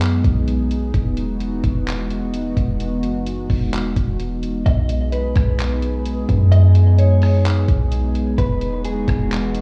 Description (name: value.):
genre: hip hop, atmospheric cloud-rap.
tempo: 129 BPM.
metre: 4/4.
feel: half-time.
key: B major.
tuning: A4 = 439 Hz.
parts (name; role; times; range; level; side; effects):
warbly tape-like pad; sustained chords; 0.0-9.6 s; E3 to G#4; -26 LUFS; equal; chorus, built-in reverb, sidechain pumping.
warm 808-style bass; bass; 0.0-9.6 s; E1 to F#2; -20 LUFS; equal; none.
lo-fi sampler-style drum kit; drums; 0.0-9.6 s; handclaps, hi-hat, kick drum, rim click; -24 LUFS; equal; none.
mellow electric guitar; melody; 4.7-9.6 s; G#4 to D#5; -29 LUFS; equal; vibrato effect, low-pass filter, digital delay.
room: digital ambience.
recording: played on a big sound system in a bare room, large studio reverb, small room ambience.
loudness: -18 LUFS.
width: mono.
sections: 0.0-4.7 A section; 4.7-9.6 B section.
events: none.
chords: 0.0 B6; 0.9 Emaj9; 4.7 B6; 8.4 Emaj9.